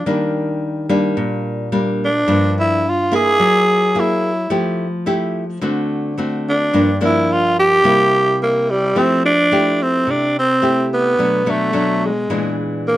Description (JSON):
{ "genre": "bossa nova", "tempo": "108 BPM", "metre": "4/4", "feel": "straight", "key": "F major", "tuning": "A4 = 440 Hz", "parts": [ { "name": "growling tenor saxophone", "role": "melody", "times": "0.0-13.0 s", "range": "G3 to Ab4", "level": "-15 LUFS", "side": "right 1 dB", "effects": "none" }, { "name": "nylon-string guitar", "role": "accompaniment", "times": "0.0-13.0 s", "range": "G2 to Ab4", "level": "-18 LUFS", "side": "equal", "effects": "none" } ], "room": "light reverb", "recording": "close, detailed microphones", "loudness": "-14 LUFS", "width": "side -14 dB against mid", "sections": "0.0-9.0 A section; 9.0-13.0 B section", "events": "tenor saxophone solo 0.0-9.0", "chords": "0.1 Ebmaj7; 2.3 Gm7; 3.4 Gb9; 4.5 Fmaj9; 5.6 D7; 6.7 Gm7; 7.8 C7; 9.0 Fmaj9; 11.2 Bm7; 12.3 Bb7#11", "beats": "| 0.06 0.61 1.17 1.73 | 2.28 2.84 3.39 3.95 | 4.50 5.06 5.62 6.17 | 6.73 7.28 7.84 8.40 | 8.95 9.51 10.06 10.62 | 11.18 11.73 12.29 12.85" }